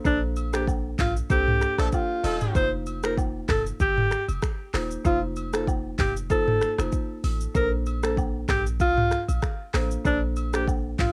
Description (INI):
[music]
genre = afrobeats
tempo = 96 BPM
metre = 4/4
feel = swing 55% on 16ths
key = unclear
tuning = A4 = 440 Hz
[part]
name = marimba with medium mallets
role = accompaniment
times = 0.0-10.7 s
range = Bb3 to C5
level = -35 LUFS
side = equal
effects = none
[part]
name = breathy alto saxophone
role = melody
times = 0.1-11.1 s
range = D4 to C5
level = -28 LUFS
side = equal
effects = none
[part]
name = warm 808-style bass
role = bass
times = 0.1-11.1 s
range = Eb1 to C2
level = -31 LUFS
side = equal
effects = none
[part]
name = afro-pop drum kit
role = drums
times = 0.1-11.1 s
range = finger snaps, handclaps, hi-hat, kick drum, rim click, shaker, toms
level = -30 LUFS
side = equal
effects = cassette tape
[part]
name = agogo bells and woodblock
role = percussion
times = 0.1-11.1 s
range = none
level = -42 LUFS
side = equal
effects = none
[part]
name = clear horn section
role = second line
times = 1.8-2.7 s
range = F3 to A4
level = -32 LUFS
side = equal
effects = none
[sound]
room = little or no reverb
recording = home recording on cassette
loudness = -25 LUFS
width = mono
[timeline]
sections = 0.0-11.1 A section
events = band accent 0.1-2.6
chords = 0.0 Bbmaj9; 2.6 F7sus4; 7.6 Bbmaj9